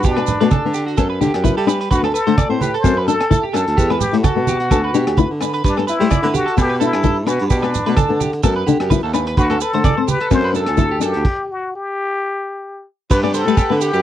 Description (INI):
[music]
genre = highlife guitar band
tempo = 129 BPM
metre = 4/4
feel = swing 55% on 16ths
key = G major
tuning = A4 = 442 Hz
[part]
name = trumpet with plunger mute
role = melody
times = 0.0-14.0 s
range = D4 to C5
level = -21 LUFS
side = left 2 dB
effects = none
[part]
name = clean electric guitar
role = arpeggios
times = 0.0-14.0 s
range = F#4 to D5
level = -22 LUFS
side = right 4 dB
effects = analog chorus, slapback echo
[part]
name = warm baritone saxophone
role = bass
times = 0.0-14.0 s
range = D2 to G3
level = -20 LUFS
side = right 1 dB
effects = none
[part]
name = crunchy breakbeat drum kit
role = drums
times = 0.0-13.9 s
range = crash cymbal, hi-hat, kick drum, rim click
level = -19 LUFS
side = right 1 dB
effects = none
[part]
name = shekere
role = percussion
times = 0.0-14.0 s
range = none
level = -27 LUFS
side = right 7 dB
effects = none
[part]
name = congas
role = percussion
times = 0.1-13.4 s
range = none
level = -23 LUFS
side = right 4 dB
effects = none
[part]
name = flamenco guitar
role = accompaniment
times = 0.2-13.8 s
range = A3 to E4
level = -20 LUFS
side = left 9 dB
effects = none
[part]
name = agogo bells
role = percussion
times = 0.2-13.7 s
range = none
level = -31 LUFS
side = left 19 dB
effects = none
[part]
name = combo organ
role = sustained chords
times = 13.1-14.0 s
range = B4 to G5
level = -29 LUFS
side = left 3 dB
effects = none
[sound]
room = little or no reverb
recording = dry, close 1970s-style studio recording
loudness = -14 LUFS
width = side -11 dB against mid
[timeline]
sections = 0.0-13.1 A section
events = stop 11.2-13.1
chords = 0.0 Gmaj7; 1.9 D7; 3.8 Emadd9; 5.6 Gmaj7; 9.4 D7; 11.2 N.C.; 13.1 Gmaj7